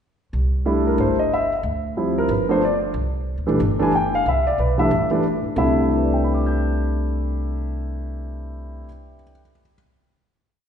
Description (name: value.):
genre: jazz piano trio.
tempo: 184 BPM.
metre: 4/4.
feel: swing 61% on 8ths.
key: C major.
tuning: A4 = 441 Hz.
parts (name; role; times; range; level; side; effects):
upright bass; bass; 0.3-8.8 s; G1 to D2; -24 LUFS; equal; none.
dark baby grand piano; melody; 0.7-9.7 s; C3 to G6; -20 LUFS; equal; none.
room: wet scoring stage reverb, RT60 1.6 s.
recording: recorded in a church or concert hall, nothing above 10.3 kHz.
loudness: -18 LUFS.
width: side -8 dB against mid.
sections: 0.3-5.6 A section; 5.6-8.2 final chord.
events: none.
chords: 0.3 C69; 1.6 Dm11; 2.3 G; 2.9 Cadd9; 5.6 C69.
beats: | 0.33 0.65 0.98 1.31 | 1.64 1.97 2.29 2.62 | 2.95 3.28 3.60 3.93 | 4.26 4.58 4.91 5.24 | 5.56 5.89 6.21 6.54 | 6.86 7.19 7.52 7.84.